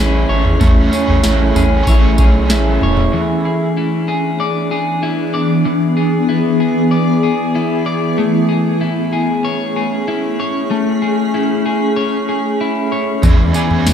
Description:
dream pop; 95 BPM; 4/4; straight; A major; A4 = 440 Hz
overdriven electric guitar; accompaniment; 0.0-3.7, 13.2-13.9 s; E3 to D5; -19 LUFS; right 4 dB; harmonic tremolo, lush chorus
granular cloud pad; sustained chords; 0.0-13.9 s; E3 to G#4; -17 LUFS; equal; built-in reverb
electric guitar at the edge of break-up; arpeggios; 0.0-13.9 s; E3 to D5; -18 LUFS; left 3 dB; wide subtle chorus, digital delay
saturated sub bass; bass; 0.0-3.1, 13.2-13.9 s; D1 to E2; -16 LUFS; equal
booming analog drum machine; drums; 0.4-3.1, 13.2-13.9 s; kick drum, snare drum, tambourine, toms; -14 LUFS; equal
moderate concert hall reverb, RT60 2.3 s; dark, warm production; -13 LUFS; side -8 dB against mid
0.0-3.1 A section; 3.1-13.9 A section
0.0 Amaj7; 3.1 E7; 8.2 Amaj7; 13.2 E7

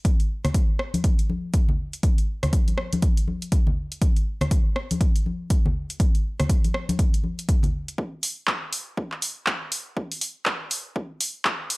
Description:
house; 121 BPM; 4/4; swing 60% on 16ths
deep house drum kit; drums; 0.0-11.8 s; handclaps, hi-hat, rim click; -27 LUFS; equal; overdrive, high-pass filter on hats, small room ambience, high-pass filter on snare
electronic kick drum; drums; 0.0-11.6 s; -21 LUFS; equal; overdrive, high-pass filter on kick, small room ambience
congas; percussion; 0.4-7.7 s; -28 LUFS; left 1 dB; sidechain pumping on perc
little or no reverb; dry, gritty hardware recording, transformer saturation; -22 LUFS; side -25 dB against mid
0.0-8.0 A section; 8.0-11.8 B section
build-up 8.0-11.8

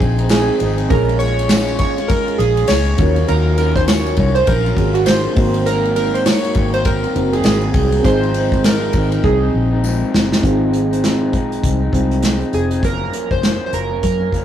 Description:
indie pop, bedroom pop; 101 BPM; 4/4; swing 60% on 16ths; A4 = 440 Hz
chorused retro synth keys; melody; 0.0-14.4 s; Gb4 to Db5; -19 LUFS; right 3 dB
electric guitar through a small old amp; accompaniment; 0.0-14.4 s; Gb2 to F4; -22 LUFS; left 3 dB; warbly pitch drift
soft electric-piano-like synth keys; accompaniment; 0.0-12.8 s; Bb3 to Db5; -22 LUFS; right 2 dB; chorus
vintage muted fingered electric bass; bass; 0.0-14.4 s; F1 to Gb2; -19 LUFS; left 1 dB
unplugged drum kit; drums; 0.0-14.4 s; hi-hat, kick drum, ride cymbal, snare drum; -19 LUFS; equal
tambourine; percussion; 0.3-10.0 s; -36 LUFS; left 6 dB
moderate studio reverb, RT60 0.6 s; rough rehearsal-room recording, tube saturation; -13 LUFS; side -10 dB against mid
0.0-10.4 A section; 10.4-12.8 B section; 12.8-14.4 C section
drum fill 9.2-10.4
0.0 Fm7; 0.9 Bbm7; 3.0 Ebm9; 5.4 Ab9; 8.0 Fm7/Ab; 12.8 Gbmaj7

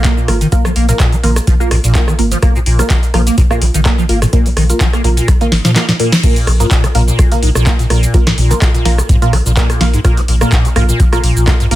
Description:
acid house; 126 BPM; 4/4; swing 54% on 16ths; A4 = 440 Hz
liquid acid bass; riff; 0.0-11.8 s; Ab2 to Bb3; -17 LUFS; equal; phaser, overdrive, ensemble chorus, sidechain pumping, tape echo
filtered dub chord stab; stabs; 0.0-11.8 s; Bb3 to Bb4; -19 LUFS; right 2 dB; phaser, analog chorus, tape echo
warm sub bass; bass; 0.0-11.8 s; Ab1 to Bb2; -13 LUFS; equal; sidechain pumping
booming analog drum machine; drums; 0.0-11.8 s; crash cymbal, handclaps, hi-hat, rim click, shaker, snare drum; -17 LUFS; equal; soft clipping on snare
electronic kick drum; drums; 0.0-11.6 s; -12 LUFS; equal
light reverb; dense, heavily limited modern master; -9 LUFS; side -15 dB against mid
0.0-6.2 A section; 6.2-11.8 B section
filter sweep on acid bass 0.0-6.2; drum fill 5.5-6.2; band accent 6.1; drop 6.2-11.8
0.0 Bb5

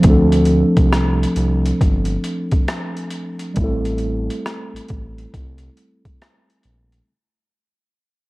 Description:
lo-fi hip hop; 68 BPM; 4/4; swing 64% on 16ths; D minor; A4 = 441 Hz
mellow tine electric piano; accompaniment; 0.0-7.1 s; F3 to A4; -19 LUFS; equal; medium stereo tremolo, cassette tape, low-pass filter
smooth synth bass; bass; 0.0-7.0 s; G1 to D2; -20 LUFS; equal
boom bap sampler-style drum kit; drums; 0.0-7.1 s; hi-hat, kick drum, rim click; -19 LUFS; equal; overdrive
light reverb; dark, warm production, vinyl crackle; -15 LUFS; side -21 dB against mid
0.0-7.1 A section
fade-out 0.0-7.1
0.0 Dm7; 3.6 Am7

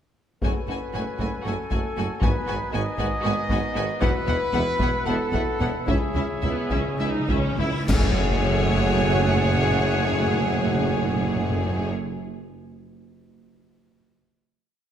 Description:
cinematic, epic orchestral film score; 199-234 BPM (eighths); 7/8; straight; F# dorian; A4 = 439 Hz
rich symphonic violin section; melody; 0.4-11.9 s; C#5 to G#5; -33 LUFS; left 4 dB
rich studio violin section; second line; 0.4-11.9 s; E4 to G#4; -33 LUFS; left 2 dB
rich symphonic viola section; accompaniment; 0.4-11.9 s; A3 to E4; -31 LUFS; right 1 dB
dark French horn section; sustained chords; 0.4-11.9 s; A3 to G#4; -34 LUFS; left 5 dB
warm woodwind section; sustained chords; 0.4-11.9 s; A3 to G#5; -33 LUFS; equal
mellow trumpet section; stabs; 0.4-11.9 s; G#4 to F#5; -30 LUFS; left 1 dB
clear symphonic cello section; bass; 0.4-11.9 s; C#2 to G#2; -31 LUFS; right 2 dB
clear tuba; bass; 0.4-11.9 s; E1 to C#2; -32 LUFS; right 3 dB
rich symphonic double bass section; bass; 0.4-11.9 s; E1 to C#2; -30 LUFS; right 4 dB
taiko ensemble; drums; 0.4-9.1 s; -27 LUFS; left 1 dB
cymbal swell, clash cymbals and concert bass drum; percussion; 4.0-9.1 s; -31 LUFS; left 1 dB
timpani; percussion; 5.9-11.9 s; F#2 to C#3; -29 LUFS; left 1 dB
reverse cymbal and sub drop; sound effects; 7.5-10.0 s; -38 LUFS; left 1 dB
moderate scoring stage reverb, RT60 1.7 s; -21 LUFS; side -9 dB against mid
0.4-7.9 theme; 7.9-12.1 final chord
slowing down 3.1-7.9; timpani fill 5.9-7.9; reverse cymbal 7.5-7.9; band accent 7.9-8.5; impact 7.9-10.0
0.4 F#madd9; 2.2 G#m7; 4.0 Esus2; 5.9 C#m; 7.9 F#madd9

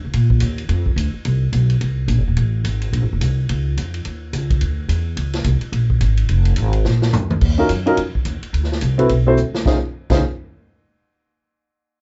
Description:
jazz, big band swing; 214 BPM; 4/4; swing 60% on 8ths; Db major; A4 = 440 Hz
upright bass; bass; 0.0-10.2 s; Eb1 to Bb2; -20 LUFS; equal
swinging big-band drum kit; drums; 0.1-10.2 s; crash cymbal, hi-hat, kick drum, ride cymbal, snare drum, toms; -26 LUFS; equal
dark baby grand piano; accompaniment; 7.6-10.2 s; C4 to C5; -19 LUFS; equal
moderate booth ambience, RT60 0.2 s; nothing above 7.8 kHz; -19 LUFS; mono
0.0-7.4 A section; 7.4-9.7 B section; 9.7-10.8 C section
drum fill 6.9-7.4, 9.4
0.0 Eb7(no3); 0.7 F5; 1.8 Cm7b5; 2.4 N.C.; 2.9 Bbm (rootless); 4.1 Dbsus2; 4.6 Dsus2; 5.2 Db5; 6.3 Fm; 6.9 Bb; 7.4 Ebm9; 8.5 D13; 9.7 Dbmaj7

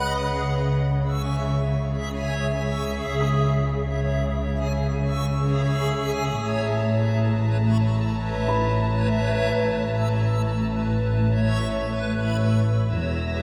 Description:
cinematic, suspense film score; free time; A4 = 440 Hz
backwards swelling texture; sustained chords; 0.0-13.4 s; G4 to E5; -30 LUFS; equal; built-in reverb
muted chamber double bass section; bass; 0.0-13.4 s; E1 to C#2; -27 LUFS; equal
muted symphonic cello section; bass; 0.0-13.4 s; E2 to C#3; -29 LUFS; equal
dark concert grand piano; texture; 3.2-13.0 s; B5 to D#6; -38 LUFS; equal
muted chamber violin section; texture; 6.4-13.4 s; A5 to A#6; -38 LUFS; equal
light reverb; -24 LUFS; mono
0.0-13.4 A section
0.0 C#m; 6.4 Aadd9

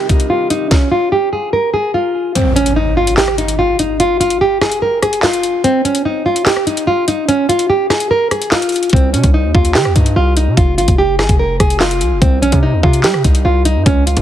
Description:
hip hop, drill; 146 BPM; 4/4; half-time; C phrygian; A4 = 441 Hz
nylon-string guitar; melody; 0.0-14.2 s; C4 to Bb4; -14 LUFS; equal; low-pass filter, tape echo
dark concert grand piano; accompaniment; 0.0-0.7 s; C3 to Bb4; -24 LUFS; left 2 dB; low-pass filter
drill drum kit; drums; 0.1-14.2 s; handclaps, hi-hat, kick drum, rim click, snare drum; -14 LUFS; equal; vintage 12-bit sampler grit
impact; sound effects; 2.4-4.0 s; -19 LUFS; equal
hard-hitting 808-style bass; bass; 8.9-14.2 s; F1 to G3; -15 LUFS; equal
little or no reverb; heavily compressed radio sound, multiband compression; -11 LUFS; side -11 dB against mid
0.0-2.4 A section; 2.4-14.2 B section
kick muted 2.4-8.9; impact 2.4-4.0
0.0 Cm; 0.7 N.C.; 8.9 Cm; 10.6 Fm; 12.2 Cm

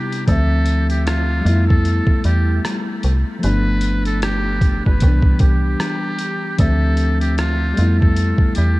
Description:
lo-fi hip hop; 76 BPM; 4/4; swing 57% on 16ths; A4 = 441 Hz
trumpet with metal mute; melody; 0.0-8.8 s; F4 to B4; -25 LUFS; equal; low-pass filter, diffuse ambient delay
mellow tine electric piano; accompaniment; 0.0-8.8 s; C3 to E5; -21 LUFS; left 1 dB; low-pass filter
lo-fi sampler-style drum kit; drums; 0.1-8.8 s; hi-hat, kick drum, rim click; -19 LUFS; equal
metallic FM bass; bass; 0.3-8.8 s; G1 to F2; -17 LUFS; equal
light reverb, digital ambience; cassette tape; -15 LUFS; side -20 dB against mid
0.0-8.8 A section
0.3 Dm9; 1.5 Fmaj9#11; 3.4 G9; 5.0 Cmaj9; 6.6 Dm9; 7.8 Fmaj9#11

